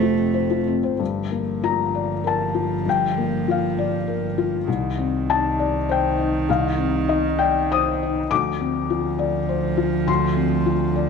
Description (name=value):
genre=neoclassical piano and strings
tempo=100 BPM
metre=3/4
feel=rubato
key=G minor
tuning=A4 = 439 Hz
part: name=warm cello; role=second line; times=0.0-11.1 s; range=Eb3 to A3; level=-25 LUFS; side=right 11 dB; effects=slapback echo
part: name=felt-muted upright piano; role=accompaniment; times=0.0-11.1 s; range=C2 to Eb6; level=-21 LUFS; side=left 9 dB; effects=none
part: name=warm double bass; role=bass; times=0.0-11.1 s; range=F1 to D2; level=-28 LUFS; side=equal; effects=none
room=moderate echo chamber reverb, RT60 2.3 s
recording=1960s-style stereo with parts hard left and right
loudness=-19 LUFS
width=side -5 dB against mid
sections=1.0-11.1 A section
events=none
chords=0.0 F; 1.0 Gm7; 4.7 Cmadd9; 8.3 Dm7